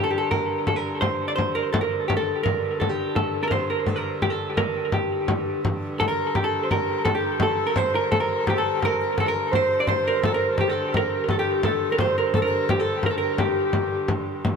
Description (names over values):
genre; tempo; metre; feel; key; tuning
medieval dance; 170 BPM; 3/4; straight; G minor; A4 = 437 Hz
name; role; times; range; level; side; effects
vintage hollow-body jazz guitar; melody; 0.0-14.1 s; G4 to D5; -24 LUFS; equal; dub echo
warm hurdy-gurdy; drone; 0.0-14.6 s; G2 to D3; -31 LUFS; right 1 dB; none
frame drum; percussion; 0.3-14.6 s; none; -26 LUFS; left 1 dB; none
Celtic harp; second line; 6.0-14.6 s; G4 to D5; -28 LUFS; right 4 dB; dub echo
bright bass recorder; second line; 6.0-14.1 s; G4 to C5; -30 LUFS; left 6 dB; none
room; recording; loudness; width
moderate plate reverb, RT60 3.5 s; echo-heavy mix; -21 LUFS; side -6 dB against mid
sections
0.0-6.0 A section; 6.0-14.4 A section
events
none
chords
none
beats
0.31 | 0.66 1.02 1.38 | 1.73 2.09 2.44 | 2.80 3.15 3.51 | 3.87 4.22 4.58 | 4.93 5.29 5.64 | 5.99 6.35 6.70 | 7.05 7.41 7.76 | 8.11 8.47 8.82 | 9.17 9.52 9.88 | 10.23 10.58 10.93 | 11.28 11.63 11.98 | 12.34 12.69 13.04 | 13.39 13.74 14.09 | 14.44